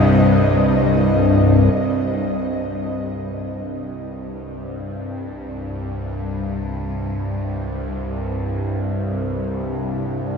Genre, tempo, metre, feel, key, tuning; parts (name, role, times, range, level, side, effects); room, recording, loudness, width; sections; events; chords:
dark ambient drone; free time; C minor; A4 = 440 Hz
bowed-like drone; drone; 0.0-10.4 s; C2 to G2; -19 LUFS; equal; built-in reverb, phaser
bubbling stepped-filter texture; texture; 0.0-1.8 s; Eb5; -27 LUFS; left 1 dB; chorus, built-in reverb
wet huge ambient reverb, RT60 8.2 s; dreamy mix soaked in reverb; -18 LUFS; side -6 dB against mid
0.0-1.7 A section; 1.7-10.4 B section
fade-in on synth drone 1.7-10.4
0.0 Cm